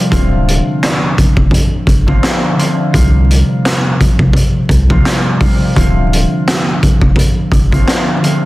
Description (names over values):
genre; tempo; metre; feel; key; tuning
hip hop, boom-bap hip-hop; 85 BPM; 4/4; swing 56% on 16ths; D minor; A4 = 444 Hz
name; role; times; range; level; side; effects
concert harp; accompaniment; 0.0-8.5 s; C3 to F4; -15 LUFS; equal; high-pass filter, low-pass filter
saturated sub bass; bass; 0.1-7.8 s; D1 to C2; -13 LUFS; equal; none
raw garage drum kit; drums; 0.1-8.4 s; handclaps, hi-hat, kick drum, snare drum; -12 LUFS; equal; none
room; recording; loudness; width
light reverb, small room ambience; dense, heavily limited modern master, vinyl crackle; -9 LUFS; side -18 dB against mid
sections
0.0-8.5 A section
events
none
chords
0.1 Dm7; 2.9 C7sus4; 5.8 Dm7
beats
| 0.12 0.82 1.53 2.23 | 2.94 3.65 4.35 5.06 | 5.76 6.47 7.17 7.88